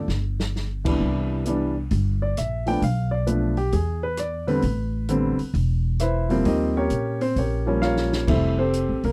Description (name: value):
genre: jazz piano trio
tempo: 132 BPM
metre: 4/4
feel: swing 66% on 8ths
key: C major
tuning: A4 = 440 Hz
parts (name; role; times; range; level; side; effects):
- warm grand piano; melody; 0.0-9.1 s; C2 to G5; -26 LUFS; equal; none
- upright bass; bass; 0.0-9.1 s; E1 to Bb2; -27 LUFS; equal; none
- open jazz drum kit; drums; 0.1-9.1 s; crash cymbal, hi-hat, kick drum, rim click, snare drum; -32 LUFS; equal; none
room: little or no reverb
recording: dry, close 1970s-style studio recording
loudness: -23 LUFS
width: mono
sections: 1.0-9.1 A section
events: drum fill 0.0-0.5, 7.8-8.3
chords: 0.1 N.C.; 1.0 Cmaj9; 2.8 Bm7b5; 3.7 E5; 4.6 Am9; 6.5 Eb9; 8.3 Fmaj9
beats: 0.09 0.54 | 0.99 1.45 1.90 2.36 | 2.81 3.27 3.72 4.18 | 4.63 5.08 5.54 6.00 | 6.45 6.91 7.36 7.82 | 8.27 8.73